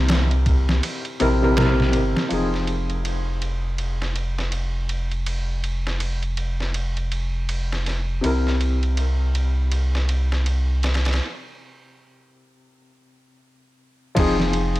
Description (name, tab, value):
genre	trip hop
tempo	81 BPM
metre	4/4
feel	swing 60% on 16ths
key	F minor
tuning	A4 = 438 Hz
part	felt-muted upright piano	accompaniment	0.0-14.8 s	C3 to Bb4	-24 LUFS	left 1 dB	tremolo, tape echo
part	warm sub bass	bass	0.0-14.8 s	F1 to C2	-22 LUFS	equal	none
part	trip hop sampler-style drum kit	drums	0.1-14.8 s	crash cymbal, kick drum, ride cymbal, snare drum	-27 LUFS	equal	high-pass filter on cymbals, high-pass filter on snare, high-pass filter on kick
room	digital ambience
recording	echo-heavy mix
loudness	-20 LUFS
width	side -17 dB against mid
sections	0.0-2.3 A section; 2.3-14.2 B section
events	break 11.2-14.2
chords	0.0 C7; 2.3 Fm7; 8.2 C7; 14.2 Fm7